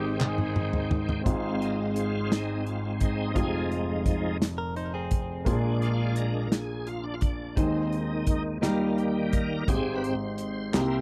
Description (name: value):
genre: slow gospel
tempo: 57 BPM (dotted quarters)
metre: 6/8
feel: straight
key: Ab major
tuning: A4 = 440 Hz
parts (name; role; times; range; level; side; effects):
- warm horn section; melody; 0.0-1.2 s; C4 to Ab4; -35 LUFS; equal; none
- warm grand piano; accompaniment; 0.0-11.0 s; F1 to G5; -31 LUFS; equal; none
- bright tonewheel organ; sustained chords; 0.0-11.0 s; Ab2 to G5; -34 LUFS; equal; slow rotary speaker, chorus vibrato
- natural country drum kit; drums; 0.2-10.9 s; hi-hat, kick drum, snare drum, toms; -30 LUFS; equal; none
- group handclap; percussion; 0.2-0.5, 10.7-11.0 s; none; -38 LUFS; equal; none
- direct-recorded clean electric guitar; second line; 4.6-5.4 s; C4 to C5; -38 LUFS; equal; tape echo
room: light reverb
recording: dry, close 1970s-style studio recording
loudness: -28 LUFS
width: mono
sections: 0.0-1.3 A section; 1.3-11.0 B section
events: drum fill 0.0-1.3; tonewheel organ solo 1.3-11.0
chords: 0.0 Abmaj7; 1.3 Ab6; 3.4 Fm7; 5.5 Bb7; 7.6 Ab/Eb; 8.6 Eb; 9.7 Abmaj7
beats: 0.21 | 1.26 2.31 | 3.36 4.42 | 5.47 6.52 | 7.58 8.63 | 9.68 10.74